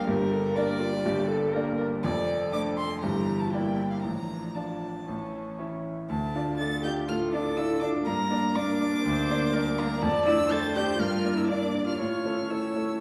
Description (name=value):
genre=quick classical-period movement for piano quartet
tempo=122 BPM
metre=4/4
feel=straight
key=D minor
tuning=A4 = 440 Hz
part: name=warm violin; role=melody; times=0.0-13.0 s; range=Bb4 to A6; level=-36 LUFS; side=equal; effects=none
part: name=warm cello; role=second line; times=0.0-13.0 s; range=E3 to A4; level=-34 LUFS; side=equal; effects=none
part: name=clear baby grand piano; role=accompaniment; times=0.0-13.0 s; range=F1 to E5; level=-31 LUFS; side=equal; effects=none
part: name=warm viola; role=accompaniment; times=0.0-13.0 s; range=C#4 to D5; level=-35 LUFS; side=equal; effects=none
room=wet recital hall reverb, RT60 1.4 s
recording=heard from further back in the room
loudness=-28 LUFS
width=mono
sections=0.0-6.1 A section; 6.1-13.0 B section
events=none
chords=0.1 Gm; 2.0 Dm/F; 3.0 Em7b5/G; 4.0 Dm/A; 5.1 A; 6.1 Dm; 8.1 Gm; 10.0 Dm/F; 11.0 Gm; 12.0 A